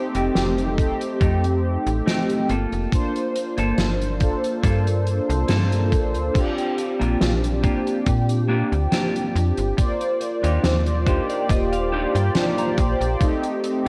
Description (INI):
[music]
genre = vaporwave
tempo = 70 BPM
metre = 4/4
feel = straight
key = Bb major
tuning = A4 = 438 Hz
[part]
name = mellow synth brass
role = accompaniment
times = 0.0-13.9 s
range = A3 to D5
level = -26 LUFS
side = equal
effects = analog chorus, cassette tape, analog delay
[part]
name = clean electric guitar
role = riff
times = 0.1-13.9 s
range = A3 to Bb5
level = -31 LUFS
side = equal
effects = subtle chorus, analog delay
[part]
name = soft-mallet drum kit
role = drums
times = 0.1-13.8 s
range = crash cymbal, hi-hat, snare drum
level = -30 LUFS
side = equal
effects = gated reverb
[part]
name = slap-like FM bass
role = bass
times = 0.2-13.2 s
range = Eb1 to Bb2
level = -25 LUFS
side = equal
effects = none
[part]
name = electronic kick drum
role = drums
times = 0.8-13.4 s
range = none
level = -23 LUFS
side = equal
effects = none
[sound]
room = light reverb, small room ambience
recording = cassette tape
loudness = -21 LUFS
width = mono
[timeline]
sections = 0.0-6.4 A section; 6.4-13.9 B section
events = band accent 5.5-5.9; clean electric guitar fill 10.6-13.2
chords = 0.0 F9; 2.5 Gm9; 6.4 Bb6; 9.8 Ebmaj9; 13.2 F9 (rootless)